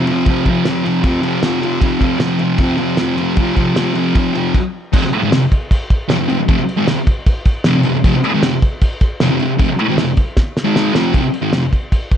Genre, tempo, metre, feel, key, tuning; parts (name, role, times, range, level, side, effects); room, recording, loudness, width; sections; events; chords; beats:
garage rock duo or trio; 154 BPM; 4/4; straight; A4 = 439 Hz
thick fuzz guitar; riff; 0.0-11.6 s; F2 to Ab3; -14 LUFS; equal; distortion
cloth-damped thuddy drum kit; drums; 0.1-12.2 s; crash cymbal, kick drum, ride cymbal, snare drum; -16 LUFS; equal
light reverb, small room ambience; cassette tape; -13 LUFS; side -9 dB against mid
0.0-4.9 A section; 4.9-11.1 B section; 11.1-12.2 C section
stop 4.5-4.9; drum fill 10.4-11.1
0.0 F5
| 0.26 0.65 1.04 1.43 | 1.82 2.21 2.60 2.98 | 3.37 3.76 4.15 4.54 | 4.93 5.32 5.71 6.10 | 6.49 6.88 7.27 7.65 | 8.04 8.43 8.82 9.21 | 9.60 9.98 10.37 10.76 | 11.15 11.54 11.93